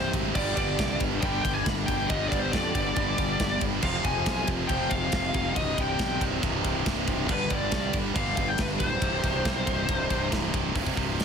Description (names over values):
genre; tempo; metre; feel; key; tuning
heavy metal; 139 BPM; 4/4; straight; C harmonic minor; A4 = 441 Hz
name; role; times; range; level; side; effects
high-gain lead guitar; melody; 0.0-10.3 s; B4 to B5; -30 LUFS; left 1 dB; distortion
distorted electric guitar; riff; 0.0-11.2 s; C2 to G3; -33 LUFS; left 14 dB; overdrive
heavy high-gain guitar; riff; 0.0-11.2 s; C2 to G3; -32 LUFS; right 15 dB; distortion
overdriven electric guitar; riff; 0.0-10.7 s; C2 to G4; -35 LUFS; right 1 dB; none
fuzz fingered electric bass; bass; 0.0-11.2 s; C1 to F2; -32 LUFS; equal; overdrive
tight metal drum kit; drums; 0.1-11.2 s; crash cymbal, hi-hat, kick drum, ride cymbal, snare drum; -30 LUFS; equal; none
room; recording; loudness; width
small room reverb; dense, heavily limited modern master; -24 LUFS; side -7 dB against mid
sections
0.0-10.7 A section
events
none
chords
0.4 G; 3.8 Fm; 5.6 Cm; 7.3 G; 9.0 Cm; 10.7 C5